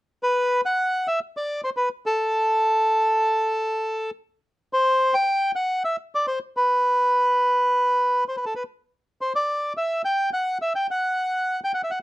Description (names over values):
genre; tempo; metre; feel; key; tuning
tango; 107 BPM; 4/4; rubato; unclear; A4 = 440 Hz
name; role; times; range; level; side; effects
bandoneon; solo; 0.2-12.0 s; A4 to G5; -20 LUFS; equal; none
room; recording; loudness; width
light reverb; dry, close 1970s-style studio recording; -20 LUFS; side -16 dB against mid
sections
0.0-12.0 A section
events
none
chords
none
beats
0.48 1.04 1.61 | 2.17 2.73 3.29 3.85 | 4.41 4.97 5.53 6.09 | 6.65 7.21 7.77 8.34 | 8.90 9.46 10.02 10.58 | 11.14 11.70